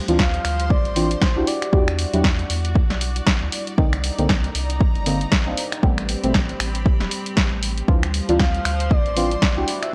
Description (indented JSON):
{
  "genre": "deep house",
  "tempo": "117 BPM",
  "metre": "4/4",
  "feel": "swing 58% on 16ths",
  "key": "D dorian",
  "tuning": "A4 = 440 Hz",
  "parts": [
    { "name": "deep dark ambient pad", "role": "sustained chords", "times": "0.0-9.9 s", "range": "G3 to F#5", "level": "-37 LUFS", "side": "equal", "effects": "chorus, built-in reverb, sidechain pumping" },
    { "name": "clear studio string section", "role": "texture", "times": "0.0-9.9 s", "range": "F3 to C6", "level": "-36 LUFS", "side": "equal", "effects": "sidechain pumping" },
    { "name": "deep mellow chord stab", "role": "stabs", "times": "0.1-9.9 s", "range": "B2 to G4", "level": "-26 LUFS", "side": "equal", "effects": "chorus, phaser, sidechain pumping" },
    { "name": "warm sub bass", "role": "bass", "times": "0.1-9.6 s", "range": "E1 to E2", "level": "-27 LUFS", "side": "equal", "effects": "sidechain pumping" },
    { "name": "punchy analog drum machine", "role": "drums", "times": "0.1-9.9 s", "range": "finger snaps, hi-hat, snare drum", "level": "-26 LUFS", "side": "equal", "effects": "none" },
    { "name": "breathy flute-like synth lead", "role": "melody", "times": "0.2-2.2, 8.4-9.9 s", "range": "C5 to F5", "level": "-30 LUFS", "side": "equal", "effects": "chorus, tape echo" },
    { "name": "electronic kick drum", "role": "drums", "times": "0.2-9.5 s", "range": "none", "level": "-21 LUFS", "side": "equal", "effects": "overdrive" }
  ],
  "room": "little or no reverb",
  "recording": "dry, gritty hardware recording, transformer saturation",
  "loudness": "-20 LUFS",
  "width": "mono",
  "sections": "0.0-9.9 A section",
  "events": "none",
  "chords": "0.0 Dm9; 1.5 Em9; 3.8 Cm9; 5.8 Am9; 7.9 Dm9"
}